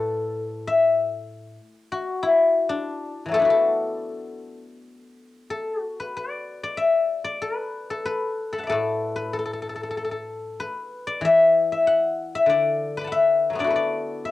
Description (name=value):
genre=chinese traditional, Chinese solo plucked strings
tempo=85-100 BPM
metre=4/4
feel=rubato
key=A zhi mode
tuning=A4 = 440 Hz
part: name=guzheng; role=solo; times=0.0-14.3 s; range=A2 to D6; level=-21 LUFS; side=left 3 dB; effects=cassette tape
room=light reverb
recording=home recording on cassette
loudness=-21 LUFS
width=side -14 dB against mid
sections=0.0-6.2 A section; 6.2-14.3 B section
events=none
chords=none